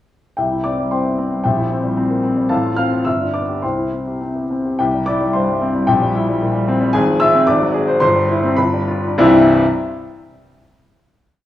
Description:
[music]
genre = classical, virtuoso piano study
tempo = 96-115 BPM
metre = 2/4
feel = rubato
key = C major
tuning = A4 = 440 Hz
[part]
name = warm concert grand piano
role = solo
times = 0.4-9.6 s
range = G1 to F6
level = -14 LUFS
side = left 1 dB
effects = none
[sound]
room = moderate recital hall reverb, RT60 1.6 s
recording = worn, warbling old tape, cassette tape, warbly pitch drift, studio reverb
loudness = -14 LUFS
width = side -13 dB against mid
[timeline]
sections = 0.4-4.8 A section; 4.8-9.2 A section; 9.2-10.4 final chord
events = slowing down 6.4-9.2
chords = 0.4 C; 1.5 C7/Bb; 2.5 F/A; 3.1 G; 3.6 C; 5.9 C7/Bb; 6.9 Fm/Ab; 7.5 Ab7; 8.0 C/G; 8.6 G7; 9.2 C

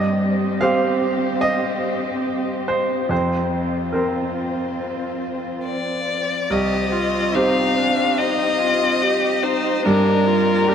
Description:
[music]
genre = neoclassical piano and strings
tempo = 72 BPM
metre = 4/4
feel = rubato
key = C minor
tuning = A4 = 438 Hz
[part]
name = bright grand piano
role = accompaniment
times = 0.0-10.7 s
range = C2 to F5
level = -21 LUFS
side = right 2 dB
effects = none
[part]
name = dark chamber string section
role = sustained chords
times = 0.0-10.7 s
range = Bb3 to D5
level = -26 LUFS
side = left 1 dB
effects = none
[part]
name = rich violin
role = melody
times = 5.7-10.7 s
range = Bb4 to F5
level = -20 LUFS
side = left 4 dB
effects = none
[part]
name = warm viola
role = accompaniment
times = 6.5-10.7 s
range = D4 to G4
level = -23 LUFS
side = right 1 dB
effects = none
[sound]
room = wet huge ambient reverb, RT60 7.9 s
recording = in a vast, echoing space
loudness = -18 LUFS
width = side -8 dB against mid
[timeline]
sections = 0.0-6.5 A section; 6.5-10.7 A section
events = none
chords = 0.0 Cm/G; 3.1 Fsus4; 6.5 Cm; 9.8 Gm

